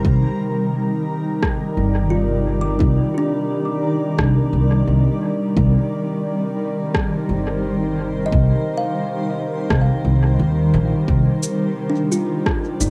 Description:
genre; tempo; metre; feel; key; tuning
ambient dub; 87 BPM; 4/4; swing 58% on 16ths; C minor; A4 = 440 Hz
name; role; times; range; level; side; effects
granular cloud pad; sustained chords; 0.0-12.9 s; C3 to Bb5; -24 LUFS; equal; built-in reverb, cassette tape
upright bass; bass; 0.0-12.9 s; G1 to Eb2; -20 LUFS; equal; none
electronic kick drum; drums; 0.0-12.6 s; none; -23 LUFS; equal; cassette tape
drifting glass-harmonics texture; texture; 0.0-12.9 s; Eb3 to Bb4; -35 LUFS; equal; chorus, built-in reverb, cassette tape
electronic rim click and shaker; drums; 1.4-12.9 s; none; -28 LUFS; equal; cassette tape, dub echo
kalimba; arpeggios; 2.1-12.9 s; D4 to D6; -29 LUFS; equal; cassette tape, analog delay
room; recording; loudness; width
light reverb; home recording on cassette; -19 LUFS; mono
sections
0.0-12.9 A section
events
none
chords
0.0 Cm7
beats
| 0.05 0.74 1.43 2.12 | 2.81 3.50 4.19 4.88 | 5.57 6.25 6.95 7.63 | 8.32 9.01 9.70 10.39 | 11.08 11.77 12.46

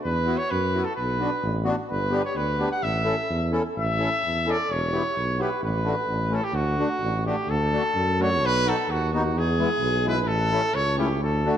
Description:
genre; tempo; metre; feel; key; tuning
alpine folk, alpine dance band; 129 BPM; 2/4; rubato; D major; A4 = 441 Hz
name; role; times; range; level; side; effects
clear trumpet; melody; 0.0-11.6 s; F#4 to F#5; -25 LUFS; equal; none
mellow tuba; bass; 0.0-11.5 s; E1 to F#2; -26 LUFS; equal; none
accordion; accompaniment; 0.3-11.6 s; G#3 to A4; -29 LUFS; left 2 dB; light tremolo tuning
room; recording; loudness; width
moderate scoring stage reverb, RT60 1.6 s; none; -22 LUFS; side -10 dB against mid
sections
0.0-7.5 A section; 7.5-11.6 B section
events
none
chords
0.0 Esus2; 1.0 Bm; 1.9 G; 2.8 A; 4.7 Em; 5.6 D/A; 6.1 A; 6.5 D; 8.4 B; 9.3 E; 10.3 A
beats
| 0.04 0.51 | 0.97 1.43 | 1.89 2.35 | 2.82 3.29 | 3.75 4.22 | 4.69 5.16 | 5.62 6.08 | 6.54 7.00 | 7.48 7.95 | 8.42 8.89 | 9.35 9.81 | 10.28 10.74 | 11.21

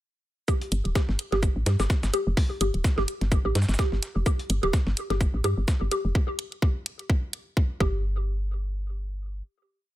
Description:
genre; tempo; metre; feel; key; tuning
minimal techno; 127 BPM; 4/4; swing 56% on 16ths; unclear; A4 = 439 Hz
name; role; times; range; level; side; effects
mallet-like synth pluck; riff; 0.5-8.2 s; G4; -31 LUFS; equal; ensemble chorus, sidechain pumping, tape echo
dusty soul sampler-style drum kit; drums; 0.5-6.0 s; hi-hat, shaker, snare drum; -38 LUFS; equal; high-pass filter on perc, high-pass filter on hats, high-pass filter on snare
electronic kick drum; drums; 0.5-7.9 s; none; -23 LUFS; equal; overdrive
woody FM bass; bass; 0.7-9.4 s; D1 to G2; -26 LUFS; equal; sidechain pumping
electronic hi-hat; drums; 0.7-7.4 s; none; -29 LUFS; right 1 dB; overdrive
room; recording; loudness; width
little or no reverb; none; -24 LUFS; side -15 dB against mid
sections
0.5-8.0 groove; 8.0-10.0 final hit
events
filter sweep on synth arpeggio sound 0.5-6.2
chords
0.5 G5; 7.8 N.C.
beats
| 0.48 0.95 1.43 1.90 | 2.37 2.84 3.32 3.79 | 4.26 4.73 5.21 5.68 | 6.15 6.62 7.10 7.57 | 8.04 8.51 8.99

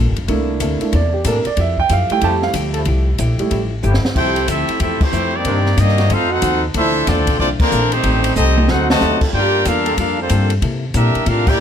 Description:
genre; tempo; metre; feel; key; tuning
jazz, big band swing; 186 BPM; 4/4; swing 63% on 8ths; F major; A4 = 440 Hz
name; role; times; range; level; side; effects
hollow-body jazz guitar; accompaniment; 0.0-11.5 s; A2 to A4; -26 LUFS; left 6 dB; none
upright bass; bass; 0.0-11.6 s; F1 to C3; -18 LUFS; equal; none
open jazz drum kit; drums; 0.2-11.5 s; crash cymbal, hi-hat, kick drum, ride cymbal, snare drum, toms; -22 LUFS; equal; none
clear concert grand piano; accompaniment; 0.3-3.6 s; G3 to A5; -19 LUFS; right 5 dB; none
mellow trombone section; sustained chords; 1.3-9.9 s; Eb3 to Bb4; -28 LUFS; left 1 dB; none
clear trumpet section; melody; 4.2-11.6 s; A3 to A5; -18 LUFS; left 1 dB; none
warm trombone section; second line; 4.2-11.6 s; C3 to G4; -22 LUFS; right 3 dB; none
room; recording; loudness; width
light reverb; close, detailed microphones; -14 LUFS; side -8 dB against mid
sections
0.0-4.2 A section; 4.2-11.6 B section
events
grand piano solo 0.0-4.2; drum fill 3.8-4.2, 8.4-9.0; band accent 5.0, 7.6, 11.4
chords
0.3 C13; 1.6 Fmaj9; 5.5 Cm9; 6.1 F7b9; 6.7 Bbmaj9#11; 8.0 Am7b5; 8.7 D7b9; 9.3 Gm9; 10.6 C13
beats
| 0.29 0.61 0.93 1.26 | 1.58 1.90 2.23 2.55 | 2.87 3.20 3.52 3.84 | 4.17 4.49 4.81 5.13 | 5.46 5.78 6.10 6.43 | 6.75 7.07 7.39 7.72 | 8.04 8.36 8.69 9.01 | 9.33 9.65 9.98 10.30 | 10.62 10.95 11.27 11.59

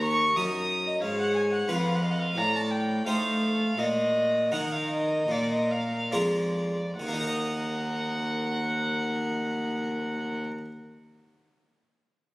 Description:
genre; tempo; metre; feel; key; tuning
classical, baroque-style sonata movement with continuo; 68-94 BPM; 4/4; straight; Eb minor; A4 = 436 Hz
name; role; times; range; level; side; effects
rich violin; melody; 0.0-10.4 s; Gb4 to F5; -37 LUFS; left 2 dB; none
warm violin; second line; 0.0-10.4 s; D5 to Eb6; -29 LUFS; equal; none
harpsichord; accompaniment; 0.0-10.7 s; Eb2 to Eb5; -31 LUFS; equal; none
rich cello; bass; 0.0-10.4 s; Eb2 to A3; -31 LUFS; equal; none
room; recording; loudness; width
moderate recital hall reverb, RT60 1.5 s; recorded on a phone in the room, studio reverb, compression; -25 LUFS; side -20 dB against mid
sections
0.0-7.0 A section; 7.0-10.5 B section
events
slowing down 0.0-7.0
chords
0.0 Ebm; 1.0 Fdim/Ab; 2.4 F7/A; 3.8 Ebm/Bb; 5.3 Bb7; 7.0 Ebm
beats
0.35 | 1.01 1.68 2.36 3.06 | 3.77 4.52 5.30 6.12 | 6.99 7.87 8.76 9.63

